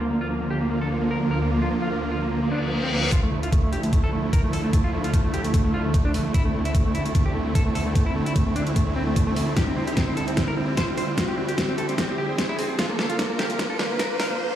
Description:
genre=heavy wobble dubstep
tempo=149 BPM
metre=4/4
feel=swing 54% on 16ths, half-time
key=D minor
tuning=A4 = 439 Hz
part: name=clean electric guitar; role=melody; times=0.0-14.4 s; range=A3 to C5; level=-27 LUFS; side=equal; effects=dub echo
part: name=supersaw chords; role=sustained chords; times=0.0-14.6 s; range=D2 to F4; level=-26 LUFS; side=right 1 dB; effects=sidechain pumping
part: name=reverse cymbal and riser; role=sound effects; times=2.5-14.6 s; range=none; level=-31 LUFS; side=left 1 dB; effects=none
part: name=dubstep drum kit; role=drums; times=3.1-14.3 s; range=hi-hat, snare drum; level=-29 LUFS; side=equal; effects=none
part: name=electronic kick drum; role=drums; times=3.1-14.1 s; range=none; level=-22 LUFS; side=equal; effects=none
room=light reverb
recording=played on a big sound system in a bare room, large studio reverb, high-pass filter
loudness=-21 LUFS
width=side -11 dB against mid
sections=0.0-3.1 A section; 3.1-14.6 B section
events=reverse cymbal 2.5-3.1; build-up 3.1-14.6; riser 3.1-14.6; filter sweep 3.1-14.6; drum fill 9.6-14.4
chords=0.0 Bb/D; 3.1 Dmadd9; 6.3 Am/D; 9.6 C/D; 12.8 Bb/D

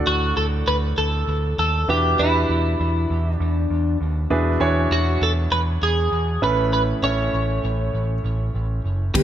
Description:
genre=piano-driven pop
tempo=99 BPM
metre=4/4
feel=straight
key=unclear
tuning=A4 = 440 Hz
part: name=clear baby grand piano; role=accompaniment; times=0.0-9.2 s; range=G2 to G#5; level=-25 LUFS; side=right 1 dB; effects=none
part: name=twelve-string electric guitar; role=melody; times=0.1-9.2 s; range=E4 to C#5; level=-23 LUFS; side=equal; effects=lush chorus
part: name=picked electric bass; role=bass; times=0.1-9.2 s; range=F#1 to E2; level=-22 LUFS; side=right 1 dB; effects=none
part: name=mellow tonewheel organ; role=sustained chords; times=9.1-9.2 s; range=D3 to G4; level=-17 LUFS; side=equal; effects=chorus vibrato, lush chorus
part: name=modern studio drum kit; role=drums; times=9.1-9.2 s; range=crash cymbal, kick drum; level=-19 LUFS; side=equal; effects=none
room=moderate plate reverb, RT60 2.5 s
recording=bright 1980s-style digital production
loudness=-18 LUFS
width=side -10 dB against mid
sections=0.0-9.2 A section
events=none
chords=0.0 D; 1.9 Em7; 4.3 E7; 6.4 Aadd9

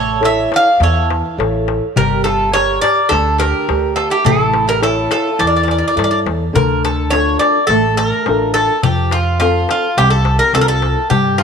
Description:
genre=greek folk, Greek bouzouki band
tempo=105 BPM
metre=4/4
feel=straight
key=D harmonic minor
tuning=A4 = 440 Hz
part: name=Greek bouzouki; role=melody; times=0.0-11.4 s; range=F4 to F5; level=-15 LUFS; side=equal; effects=none
part: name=mandolin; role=second line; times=0.0-6.2 s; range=D4 to D5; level=-23 LUFS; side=right 10 dB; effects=none
part: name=fingerpicked old ladder-braced acoustic guitar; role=accompaniment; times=0.0-11.4 s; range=C3 to D5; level=-19 LUFS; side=equal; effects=none
part: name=upright bass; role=bass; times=0.0-11.4 s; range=G1 to G2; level=-18 LUFS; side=equal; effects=none
part: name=darbuka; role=percussion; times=0.2-11.4 s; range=none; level=-21 LUFS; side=left 9 dB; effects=none
room=moderate plate reverb, RT60 2.6 s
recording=1960s-style stereo with parts hard left and right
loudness=-12 LUFS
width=side -6 dB against mid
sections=0.0-6.5 A section; 6.5-11.4 A section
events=none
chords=0.0 A; 1.9 Gm; 4.3 A; 6.5 Dm; 8.8 F

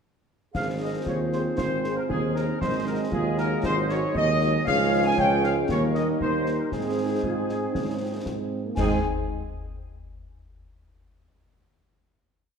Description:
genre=military-style march for wind band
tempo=117 BPM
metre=2/4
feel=straight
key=Ab major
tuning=A4 = 440 Hz
part: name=bright large flute ensemble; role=second line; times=0.5-9.1 s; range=Ab4 to Ab5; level=-32 LUFS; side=left 2 dB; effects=none
part: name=clear euphonium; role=second line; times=0.5-8.5 s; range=Bb3 to Ab4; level=-32 LUFS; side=right 4 dB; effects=none
part: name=mellow woodwind section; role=second line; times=0.5-9.0 s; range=G4 to Eb5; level=-34 LUFS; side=left 1 dB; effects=none
part: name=warm tuba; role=bass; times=0.5-9.0 s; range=Ab1 to Ab2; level=-28 LUFS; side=right 2 dB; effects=none
part: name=concert snare drum, clash cymbals and concert bass drum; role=drums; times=0.5-9.1 s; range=none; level=-33 LUFS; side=left 2 dB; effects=none
part: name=dark trumpet section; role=melody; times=0.6-9.0 s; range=Ab4 to Ab5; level=-30 LUFS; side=equal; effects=none
part: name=mellow trombone section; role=sustained chords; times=0.6-9.0 s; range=Eb3 to F4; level=-33 LUFS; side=right 2 dB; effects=none
part: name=mellow French horn section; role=accompaniment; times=0.8-9.0 s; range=G3 to Ab4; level=-32 LUFS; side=left 2 dB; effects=none
room=wet scoring stage reverb, RT60 1.9 s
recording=dark, warm production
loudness=-23 LUFS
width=side -6 dB against mid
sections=0.5-8.8 A section; 8.8-9.8 final chord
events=none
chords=0.5 Ab; 2.6 Ab7; 4.7 Db; 5.7 Eb; 6.7 Ab

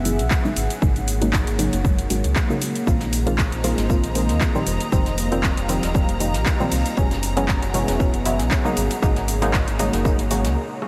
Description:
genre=deep house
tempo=117 BPM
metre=4/4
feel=swing 54% on 16ths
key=unclear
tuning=A4 = 439 Hz
part: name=dark analog pad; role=sustained chords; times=0.0-10.9 s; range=Bb3 to Gb5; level=-31 LUFS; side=equal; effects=chorus, sidechain pumping
part: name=filtered dub chord stab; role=stabs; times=0.0-10.6 s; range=Bb2 to Bb4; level=-27 LUFS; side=equal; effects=chorus, cassette tape, sidechain pumping, tape echo
part: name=sub bass with octave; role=bass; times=0.0-10.6 s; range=Eb1 to Eb2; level=-27 LUFS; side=equal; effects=sidechain pumping
part: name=deep house drum kit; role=drums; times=0.1-10.9 s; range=handclaps, hi-hat, rim click, shaker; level=-30 LUFS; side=equal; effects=overdrive
part: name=electronic kick drum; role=drums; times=0.3-10.2 s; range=none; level=-24 LUFS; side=equal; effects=overdrive
part: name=soft brush drum kit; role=drums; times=2.9-10.6 s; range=hi-hat, snare drum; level=-42 LUFS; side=equal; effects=none
part: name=rich studio violin section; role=texture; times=2.9-10.6 s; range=Bb5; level=-37 LUFS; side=equal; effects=sidechain pumping
part: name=congas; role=percussion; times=3.6-9.9 s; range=none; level=-39 LUFS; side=equal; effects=none
room=moderate huge ambient reverb, RT60 6.9 s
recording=dreamy mix soaked in reverb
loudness=-21 LUFS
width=mono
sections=0.0-10.9 A section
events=filter sweep on synth stab 0.0-10.9; break 10.6-10.9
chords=0.0 Gb9sus4; 0.6 Ab9sus4; 2.9 Bb9sus4; 4.7 F9sus4; 7.0 Gb9sus4; 8.8 Ab9sus4

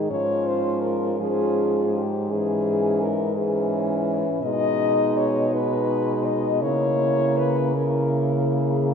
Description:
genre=classical, lyrical piece for horn quartet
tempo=55 BPM (dotted quarters)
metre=12/8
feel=rubato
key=unclear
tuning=A4 = 441 Hz
part: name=warm French horn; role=melody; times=0.0-8.9 s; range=G4 to D#5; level=-24 LUFS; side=left 3 dB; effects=none
part: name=mellow French horn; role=second line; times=0.0-8.9 s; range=Db4 to E4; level=-28 LUFS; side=right 5 dB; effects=none
part: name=mellow French horn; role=accompaniment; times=0.0-8.9 s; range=Fb3 to A#3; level=-27 LUFS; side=left 2 dB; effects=none
part: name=mellow French horn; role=bass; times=0.0-8.9 s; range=Ab2 to C#3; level=-26 LUFS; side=right 1 dB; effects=none
room=wet church reverb, RT60 3.6 s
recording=minimal, uncompressed stereo recording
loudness=-20 LUFS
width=side -6 dB against mid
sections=0.0-8.9 A section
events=none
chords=0.1 Db/Ab; 2.3 Dbm/Ab; 4.4 G#m/B; 6.6 A#dim/C#

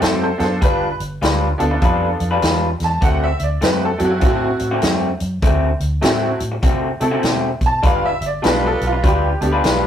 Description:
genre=electric blues shuffle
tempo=100 BPM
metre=4/4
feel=swing 63% on 8ths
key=unclear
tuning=A4 = 440 Hz
part: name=honky-tonk upright piano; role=accompaniment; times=0.0-9.6 s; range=A3 to A5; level=-20 LUFS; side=right 1 dB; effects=none
part: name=electric guitar through a small old amp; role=riff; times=0.0-9.9 s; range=D3 to B4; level=-20 LUFS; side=left 2 dB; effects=none
part: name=vintage muted fingered electric bass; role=bass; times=0.0-9.9 s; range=G1 to C3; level=-22 LUFS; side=equal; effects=none
part: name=vintage drum kit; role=drums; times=0.0-9.8 s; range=hi-hat, kick drum, snare drum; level=-19 LUFS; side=equal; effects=none
part: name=mellow saxophone section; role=stabs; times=8.4-9.9 s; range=F4 to B4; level=-24 LUFS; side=right 3 dB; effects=none
room=moderate studio reverb, RT60 0.6 s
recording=rough rehearsal-room recording, tube saturation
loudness=-15 LUFS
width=side -9 dB against mid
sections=0.0-9.9 A section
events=none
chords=0.0 D7; 0.6 G7; 3.0 D7; 7.8 G7

